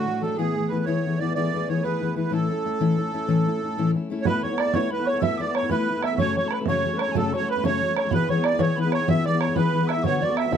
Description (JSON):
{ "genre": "celtic folk, Celtic slide", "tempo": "124 BPM (dotted quarters)", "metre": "12/8", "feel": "straight", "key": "A major", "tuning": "A4 = 440 Hz", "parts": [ { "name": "accordion", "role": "melody", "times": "0.0-10.6 s", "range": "F#4 to E5", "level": "-26 LUFS", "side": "right 6 dB", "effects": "light tremolo tuning" }, { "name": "fingerpicked steel-string acoustic guitar", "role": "accompaniment", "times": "0.0-10.6 s", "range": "F#2 to A4", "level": "-24 LUFS", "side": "left 4 dB", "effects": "none" }, { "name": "warm chamber string section", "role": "drone", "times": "0.0-4.3 s", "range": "A2 to A3", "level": "-36 LUFS", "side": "right 3 dB", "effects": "none" }, { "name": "mellow hollow mid whistle", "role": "second line", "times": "4.3-10.6 s", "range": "G#5 to E6", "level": "-34 LUFS", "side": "left 5 dB", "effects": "none" }, { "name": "open-back banjo", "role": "second line", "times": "4.3-10.6 s", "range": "A4 to E5", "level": "-29 LUFS", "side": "right 3 dB", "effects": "none" }, { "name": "bodhran", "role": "percussion", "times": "4.3-10.6 s", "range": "none", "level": "-28 LUFS", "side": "right 9 dB", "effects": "none" } ], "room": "moderate studio reverb, RT60 0.6 s", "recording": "none", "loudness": "-21 LUFS", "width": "side -8 dB against mid", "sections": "0.0-4.3 A section; 4.3-10.6 B section", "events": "none", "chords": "0.4 E; 2.3 A; 4.3 Asus2; 6.2 F#m; 8.1 E; 10.0 D6", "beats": "| 0.36 0.85 1.34 1.83 | 2.31 2.80 3.29 3.77 | 4.25 4.74 5.22 5.71 | 6.19 6.67 7.15 7.63 | 8.12 8.60 9.08 9.56 | 10.05 10.53" }